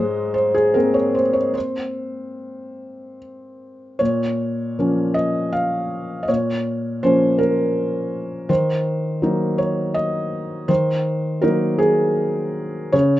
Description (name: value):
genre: neoclassical minimalist piano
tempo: 73-83 BPM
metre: 3/4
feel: rubato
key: Bb minor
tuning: A4 = 442 Hz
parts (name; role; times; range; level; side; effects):
- felt-muted upright piano; solo; 0.0-13.2 s; Ab2 to F5; -18 LUFS; equal; none
room: wet small room reverb, RT60 0.6 s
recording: rough home demo mix, nothing above 7.8 kHz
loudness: -18 LUFS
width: side -14 dB against mid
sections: 0.0-4.0 A section; 4.0-13.2 B section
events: none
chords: 0.0 Abadd9; 4.0 Bbm; 8.5 Ebm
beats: 0.75 | 1.54 2.36 3.19 | 4.00 4.77 5.53 | 6.29 7.03 7.76 | 8.49 9.22 9.95 | 10.69 11.42 12.17 | 12.94